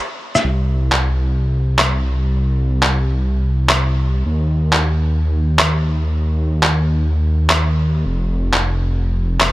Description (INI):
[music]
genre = future garage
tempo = 126 BPM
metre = 4/4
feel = swing 64% on 16ths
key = unclear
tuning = A4 = 438 Hz
[part]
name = dark detuned saw bass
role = bass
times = 0.4-9.5 s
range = F1 to Eb2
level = -16 LUFS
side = equal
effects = none
[part]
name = electronic rim click, shaker and handclaps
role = drums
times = 0.4-9.5 s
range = none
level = -18 LUFS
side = equal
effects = none
[sound]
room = little or no reverb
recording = dry, gritty hardware recording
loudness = -15 LUFS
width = side -18 dB against mid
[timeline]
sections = 0.4-9.5 A section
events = none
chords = none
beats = | 0.44 0.92 1.40 1.87 | 2.35 2.82 3.30 3.78 | 4.25 4.73 5.21 5.68 | 6.16 6.63 7.11 7.59 | 8.06 8.54 9.01 9.49